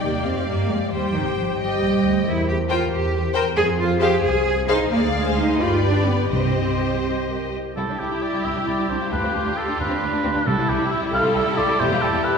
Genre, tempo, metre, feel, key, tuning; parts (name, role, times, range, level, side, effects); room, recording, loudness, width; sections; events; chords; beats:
quick classical-period movement for symphony orchestra; 90 BPM (dotted quarters); 6/8; rubato; C minor, C major from 7.8 s; A4 = 440 Hz
warm studio violin section; melody; 0.0-12.4 s; G4 to G5; -30 LUFS; left 4 dB
rich studio violin section; second line; 0.0-12.4 s; G3 to Eb5; -28 LUFS; left 4 dB
rich studio viola section; accompaniment; 0.0-12.4 s; D4 to Bb4; -27 LUFS; right 1 dB
mellow French horn section; sustained chords; 0.0-7.8 s; G4 to F5; -28 LUFS; left 5 dB
rich studio cello section; bass; 0.0-12.4 s; C2 to Bb4; -24 LUFS; right 2 dB
warm studio double bass section; bass; 0.0-12.1 s; E1 to G2; -26 LUFS; right 1 dB
timpani; percussion; 0.0-0.2, 6.3-7.0, 10.5-11.1 s; C3; -29 LUFS; equal
warm oboe; second line; 7.8-12.4 s; G4 to F5; -24 LUFS; right 1 dB
wet concert hall reverb, RT60 1.9 s; heard from further back in the room; -19 LUFS; side -6 dB against mid
0.0-7.8 A section; 7.8-12.4 A section
0.0 Cm; 2.3 C7/E; 3.6 Fm; 4.9 Ddim; 5.6 G7; 6.3 Cm; 7.8 C; 9.1 G7/D; 10.5 C; 11.8 Fmaj9#11/E (rootless)
0.26 | 0.93 1.59 | 2.26 2.92 | 3.58 4.24 | 4.91 5.60 | 6.33 7.05 | 7.76 8.45 | 9.12 9.79 | 10.47 11.13 | 11.80